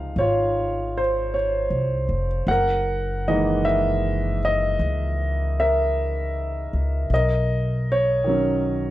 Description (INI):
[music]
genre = jazz ballad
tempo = 52 BPM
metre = 4/4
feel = swing 69% on 8ths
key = unclear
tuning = A4 = 440 Hz
[part]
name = warm grand piano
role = accompaniment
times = 0.0-8.9 s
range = B#2 to F#5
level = -22 LUFS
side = equal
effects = none
[part]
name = upright bass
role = bass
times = 0.0-8.9 s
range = E#1 to C#2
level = -25 LUFS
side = equal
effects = none
[sound]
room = light reverb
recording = none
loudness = -20 LUFS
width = side -15 dB against mid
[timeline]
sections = 0.0-8.9 A section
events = none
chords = 0.0 C#maj9; 2.5 F#13; 7.1 Bmaj9